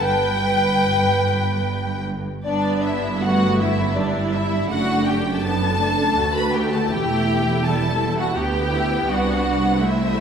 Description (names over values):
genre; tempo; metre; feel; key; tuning
classical, slow romantic movement for string orchestra; 72-84 BPM; 3/4; rubato; G major; A4 = 440 Hz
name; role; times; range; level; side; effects
warm symphonic violin section; melody; 0.0-10.2 s; D5 to B5; -25 LUFS; left 3 dB; none
warm symphonic violin section; second line; 0.0-10.2 s; D4 to G5; -25 LUFS; left 2 dB; none
rich symphonic viola section; accompaniment; 0.0-10.2 s; G3 to B4; -23 LUFS; right 2 dB; none
rich symphonic double bass section; bass; 0.0-10.2 s; E1 to D2; -27 LUFS; right 2 dB; none
warm symphonic cello section; bass; 0.0-10.2 s; C2 to G2; -25 LUFS; right 2 dB; none
room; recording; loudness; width
wet scoring stage reverb, RT60 1.9 s; minimal, uncompressed stereo recording; -18 LUFS; side -7 dB against mid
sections
0.0-2.5 A section; 2.5-10.2 A section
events
none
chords
0.0 G; 4.7 D/F#; 6.9 Em; 9.1 C